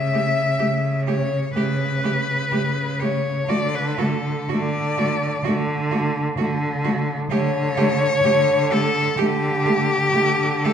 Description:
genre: classical, lyrical piece for cello ensemble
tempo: 63 BPM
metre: 4/4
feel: rubato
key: unclear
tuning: A4 = 440 Hz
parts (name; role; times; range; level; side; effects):
- clear cello; melody; 0.0-10.7 s; G4 to E5; -22 LUFS; left 3 dB; none
- rich cello; bass; 0.0-10.7 s; C#3 to D3; -23 LUFS; right 1 dB; none
- rich cello; second line; 0.1-10.7 s; F#4 to G4; -30 LUFS; right 7 dB; none
- rich cello; accompaniment; 0.1-10.7 s; A3; -26 LUFS; right 1 dB; none
room: wet scoring stage reverb, RT60 1.7 s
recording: recorded in a church or concert hall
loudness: -18 LUFS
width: side -8 dB against mid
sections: 0.0-10.7 A section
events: none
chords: 0.0 A/C#; 3.5 D5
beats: 0.60 1.55 2.52 | 3.48 4.51 5.47 6.39 | 7.32 8.25 9.19 10.14

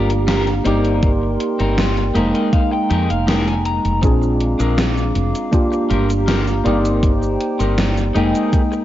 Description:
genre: vaporwave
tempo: 80 BPM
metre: 4/4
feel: straight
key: C minor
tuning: A4 = 440 Hz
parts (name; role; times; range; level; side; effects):
- tine electric piano; accompaniment; 0.0-8.8 s; Ab3 to G5; -19 LUFS; equal; wide subtle chorus, analog delay
- warbly tape-like pad; sustained chords; 0.0-8.8 s; Ab3 to D6; -26 LUFS; right 1 dB; chorus, built-in reverb
- electric guitar at the edge of break-up; riff; 0.0-8.8 s; C4 to Bb5; -25 LUFS; left 4 dB; wide subtle chorus, analog delay
- woody fretless electric bass; bass; 0.0-8.3 s; F1 to F2; -19 LUFS; equal; wide subtle chorus
- gated 80s digital drum machine; drums; 0.1-8.8 s; cabasa, hi-hat, snare drum; -22 LUFS; equal; gated reverb, gated reverb snare, overdrive
- electronic kick drum; drums; 1.0-8.7 s; none; -16 LUFS; equal; overdrive
room: light reverb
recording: cassette tape, nothing above 7.5 kHz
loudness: -15 LUFS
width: side -13 dB against mid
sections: 0.0-8.8 A section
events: clean electric guitar fill 1.8-4.0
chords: 0.0 Gm7; 0.7 Cm7/G; 2.2 Fm11; 4.0 Bb7; 5.5 Gm7; 6.7 Cm7/G; 8.2 Fm11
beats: 0.28 | 1.03 1.78 2.53 3.28 | 4.03 4.78 5.53 6.28 | 7.03 7.78 8.53

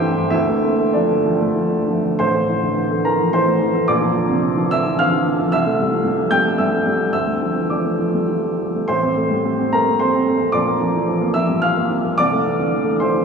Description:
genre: neoclassical minimalist piano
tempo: 93-114 BPM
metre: 3/4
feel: rubato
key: D minor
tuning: A4 = 441 Hz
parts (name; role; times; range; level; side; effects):
- warm upright piano; solo; 0.0-13.2 s; A1 to G6; -16 LUFS; equal; none
room: wet cathedral reverb, RT60 7.5 s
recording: recorded in a church or concert hall, small room ambience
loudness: -16 LUFS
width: side -6 dB against mid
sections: 0.0-2.2 A section; 2.2-13.2 B section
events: none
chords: 0.3 Dm; 2.2 Am; 3.9 Bb; 5.5 C6; 7.1 Dm; 8.9 Am; 10.5 Bb; 12.2 C6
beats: | 0.32 0.96 1.58 | 2.19 2.77 3.33 | 3.88 4.42 4.98 | 5.51 6.04 6.58 | 7.14 7.72 8.29 | 8.87 9.44 10.00 | 10.55 11.10 11.65 | 12.19 12.72

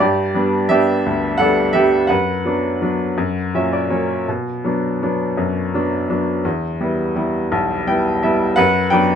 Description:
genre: classical, lyrical solo piano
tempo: 56 BPM (dotted quarters)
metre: 6/8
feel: rubato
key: B minor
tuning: A4 = 435 Hz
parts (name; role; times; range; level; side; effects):
- bright upright piano; solo; 0.0-9.2 s; B1 to G5; -16 LUFS; equal; none
room: light reverb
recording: none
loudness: -16 LUFS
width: side -8 dB against mid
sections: 0.0-9.2 A section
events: upright piano fill 3.2-4.3, 7.5-8.6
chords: 0.0 G; 2.1 Bm/F#; 3.2 F#; 4.3 Bm; 6.5 Em; 8.6 Bm/F#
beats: | 0.01 1.04 | 2.10 3.17 | 4.27 5.37 | 6.45 7.51 | 8.57

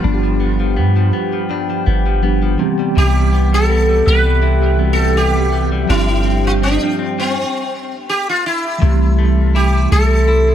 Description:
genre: contemporary R&B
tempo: 82 BPM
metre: 4/4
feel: swing 54% on 16ths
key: C major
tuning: A4 = 440 Hz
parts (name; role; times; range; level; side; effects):
- mellow tine electric piano; accompaniment; 0.0-10.5 s; E3 to G4; -20 LUFS; right 1 dB; medium stereo tremolo
- deep dark ambient pad; sustained chords; 0.0-10.5 s; G4 to C6; -25 LUFS; right 1 dB; chorus, built-in reverb
- direct-recorded clean electric guitar; arpeggios; 0.0-10.5 s; G2 to E4; -25 LUFS; left 7 dB; tape echo
- soft 808-style bass; bass; 0.0-10.5 s; G1 to G2; -14 LUFS; equal; none
- sitar; melody; 3.0-10.5 s; C4 to B4; -18 LUFS; equal; tape echo
room: little or no reverb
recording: none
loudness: -13 LUFS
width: side -10 dB against mid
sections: 0.0-8.8 A section; 8.8-10.5 B section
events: stop 7.4-8.8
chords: 0.0 G7; 2.6 Cmaj7; 5.9 G7sus4; 8.8 C6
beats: | 0.04 0.77 1.50 2.23 | 2.96 3.69 4.42 5.16 | 5.89 6.62 7.35 8.08 | 8.82 9.55 10.28

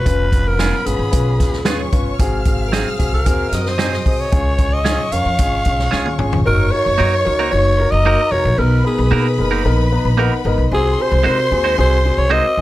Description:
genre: uptempo 1960s-style soul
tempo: 113 BPM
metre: 4/4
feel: straight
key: F# major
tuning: A4 = 441 Hz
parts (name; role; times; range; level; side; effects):
- breathy alto saxophone; melody; 0.0-12.6 s; G#4 to E#5; -19 LUFS; equal; none
- warm studio violin section; second line; 0.0-12.6 s; B3 to E#6; -26 LUFS; left 1 dB; none
- warm concert grand piano; accompaniment; 0.1-12.6 s; G#2 to A#5; -22 LUFS; left 2 dB; tube saturation
- upright bass; bass; 0.1-12.6 s; E#1 to B#2; -18 LUFS; equal; none
- vintage drum kit; drums; 0.1-6.4 s; hi-hat, kick drum, snare drum, toms; -19 LUFS; equal; none
- clean electric guitar; stabs; 0.6-12.5 s; F#3 to B#4; -20 LUFS; right 7 dB; none
room: light reverb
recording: none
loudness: -14 LUFS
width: side -16 dB against mid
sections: 0.0-6.5 A section; 6.5-12.6 B section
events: drum fill 5.9-6.5; grand piano fill 9.6-10.7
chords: 0.1 C#7/E#; 2.2 G#7; 4.3 C#; 6.5 F#6; 8.6 Bmaj7; 10.7 G#7/B#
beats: | 0.06 0.60 1.13 1.66 | 2.19 2.73 3.26 3.79 | 4.33 4.86 5.39 5.92 | 6.46 6.99 7.52 8.05 | 8.59 9.12 9.65 10.18 | 10.71 11.24 11.78 12.31

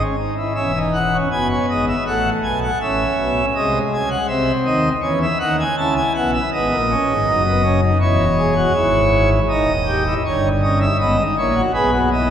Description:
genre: classical, baroque-style 3-part fugue for pipe organ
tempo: 80 BPM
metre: 4/4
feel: straight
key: C# minor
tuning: A4 = 439 Hz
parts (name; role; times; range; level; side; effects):
- pipe organ, principal chorus; solo; 0.0-12.3 s; D#1 to A5; -16 LUFS; equal; none
room: wet cathedral reverb, RT60 4.3 s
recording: recorded in a church or concert hall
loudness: -16 LUFS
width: side -9 dB against mid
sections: 0.6-12.3 A section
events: none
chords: 0.0 N.C.; 0.6 C#m/E; 2.0 F#m/A; 3.5 G#7/B#; 5.0 C#m; 6.5 G#m; 8.0 C#m/E; 9.5 D#7; 11.0 G#m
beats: | 0.55 1.30 2.05 2.80 | 3.55 4.29 5.03 5.78 | 6.52 7.26 8.01 8.75 | 9.50 10.25 11.00 11.75

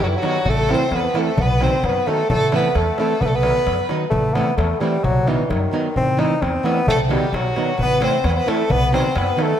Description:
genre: balkan folk, Balkan wedding band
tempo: 131 BPM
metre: 2/4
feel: straight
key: unclear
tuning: A4 = 440 Hz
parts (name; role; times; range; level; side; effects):
- clear bassoon; melody; 0.0-9.6 s; D#3 to D#4; -20 LUFS; left 2 dB; ping-pong delay
- rich violin; second line; 0.0-3.9, 6.9-9.6 s; E4 to C5; -24 LUFS; right 3 dB; none
- upright bass; bass; 0.0-9.3 s; A1 to F#2; -22 LUFS; equal; none
- darbuka; percussion; 0.0-9.6 s; none; -24 LUFS; equal; none
- nylon-string guitar; accompaniment; 0.2-9.5 s; D#3 to E4; -24 LUFS; right 4 dB; lush chorus
room: moderate lush hall reverb, RT60 2.3 s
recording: dreamy mix soaked in reverb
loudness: -16 LUFS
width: side -9 dB against mid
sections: 0.0-4.1 A section; 4.1-9.6 A section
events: none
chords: 0.5 Am; 1.4 B; 2.3 Am; 3.2 B; 4.1 Am; 5.0 B; 6.0 Am; 6.9 B; 7.8 Am; 8.7 B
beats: | 0.45 0.91 | 1.37 1.83 | 2.29 2.75 | 3.21 3.67 | 4.13 4.59 | 5.04 5.50 | 5.96 6.42 | 6.88 7.34 | 7.79 8.25 | 8.71 9.17

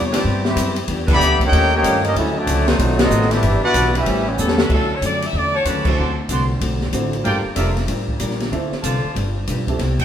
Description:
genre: jazz, big band swing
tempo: 189 BPM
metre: 4/4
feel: swing 64% on 8ths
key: D major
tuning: A4 = 437 Hz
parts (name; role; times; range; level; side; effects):
- dark trumpet section; melody; 0.0-4.6 s; A3 to B5; -19 LUFS; equal; none
- clear trombone section; second line; 0.0-4.6 s; D3 to G4; -24 LUFS; equal; none
- vintage hollow-body jazz guitar; accompaniment; 0.0-10.0 s; A2 to B4; -26 LUFS; left 3 dB; none
- upright bass; bass; 0.0-10.0 s; F1 to G2; -21 LUFS; equal; none
- warm saxophone section; sustained chords; 0.1-5.0 s; F#3 to C5; -28 LUFS; equal; none
- open jazz drum kit; drums; 0.1-10.0 s; crash cymbal, hi-hat, kick drum, ride cymbal, snare drum; -22 LUFS; equal; none
- edgy saxophone section; melody; 4.4-6.2, 10.0 s; A4 to G5; -22 LUFS; equal; none
- clear grand piano; accompaniment; 4.7-9.8 s; A3 to C#5; -27 LUFS; right 4 dB; none
- clear trumpet section; stabs; 5.5-9.2 s; F4 to C6; -26 LUFS; right 2 dB; none
room: wet stone room reverb, RT60 1.3 s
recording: band playing live in one room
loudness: -16 LUFS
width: side -9 dB against mid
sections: 0.0-4.7 A section; 4.7-10.0 B section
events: band accent 1.0, 3.0, 5.8; drum fill 4.4-4.7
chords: 0.0 Cmaj7; 0.9 Em7; 1.5 Eb7#11; 2.2 Dmaj7; 2.8 B7b9; 3.4 Em7; 4.1 A9; 4.7 Dmaj7; 6.0 D7; 7.2 Gm7; 8.5 Dm7; 9.2 G7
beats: 0.25 0.57 | 0.89 1.21 1.52 1.84 | 2.16 2.48 2.79 3.11 | 3.43 3.75 4.07 4.38 | 4.70 5.02 5.34 5.66 | 5.97 6.29 6.61 6.93 | 7.25 7.57 7.88 8.20 | 8.52 8.84 9.15 9.47 | 9.79

